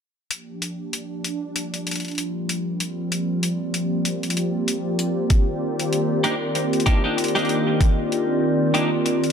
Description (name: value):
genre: glitch hop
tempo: 96 BPM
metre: 4/4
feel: swing 57% on 16ths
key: G minor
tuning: A4 = 439 Hz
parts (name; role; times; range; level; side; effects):
- warm analog pad; sustained chords; 0.3-9.3 s; Eb3 to G4; -24 LUFS; equal; chorus, sidechain pumping
- electronic hi-hat; drums; 0.3-9.3 s; none; -27 LUFS; left 3 dB; overdrive, small room ambience
- warbly tape-like pad; texture; 2.0-9.3 s; G3 to D5; -27 LUFS; equal; chorus, built-in reverb, sidechain pumping
- electronic kick drum; drums; 5.3-8.0 s; none; -18 LUFS; equal; overdrive, small room ambience
- clean electric guitar; stabs; 6.2-8.9 s; Bb3 to G4; -24 LUFS; right 1 dB; analog chorus, sidechain pumping, analog delay
room: moderate plate reverb, RT60 2.1 s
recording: echo-heavy mix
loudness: -20 LUFS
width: side -7 dB against mid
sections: 0.3-9.3 A section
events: fade-in on ambient pad 0.3-9.3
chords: 0.3 Gm7; 5.3 Cm7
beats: | 0.31 0.93 1.56 2.18 | 2.81 3.43 4.06 4.68 | 5.31 5.93 6.56 7.18 | 7.81 8.43 9.06